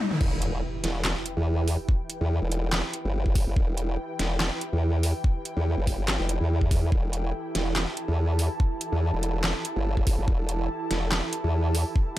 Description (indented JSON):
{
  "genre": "heavy wobble dubstep",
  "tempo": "143 BPM",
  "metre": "4/4",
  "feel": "swing 54% on 16ths, half-time",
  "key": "E minor",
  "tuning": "A4 = 440 Hz",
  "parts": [
    { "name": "supersaw chords", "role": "sustained chords", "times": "0.0-12.2 s", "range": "B2 to B4", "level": "-38 LUFS", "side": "right 1 dB", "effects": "sidechain pumping, low-pass filter" },
    { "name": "dubstep drum kit", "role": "drums", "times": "0.0-11.8 s", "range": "crash cymbal, handclaps, hi-hat, snare drum, toms", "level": "-29 LUFS", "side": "equal", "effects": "none" },
    { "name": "riser and impact", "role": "sound effects", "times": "0.0-1.9 s", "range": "none", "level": "-35 LUFS", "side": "equal", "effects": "none" },
    { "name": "formant-sweep wobble bass", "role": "bass", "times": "0.2-11.8 s", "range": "E1 to E2", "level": "-25 LUFS", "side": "equal", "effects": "chorus, overdrive" },
    { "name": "electronic kick drum", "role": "drums", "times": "0.2-12.0 s", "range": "none", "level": "-24 LUFS", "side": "equal", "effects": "none" },
    { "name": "airy breathy pad", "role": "texture", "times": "0.6-12.2 s", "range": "E4 to A5", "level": "-35 LUFS", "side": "right 2 dB", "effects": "chorus, sidechain pumping" }
  ],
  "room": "digital ambience",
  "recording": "dark, warm production",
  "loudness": "-24 LUFS",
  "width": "side -15 dB against mid",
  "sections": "0.2-12.2 A section",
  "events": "break 0.0; drum fill 0.0; riser 0.0; drop 0.2-12.2; impact 0.2-1.9",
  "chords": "0.2 Em"
}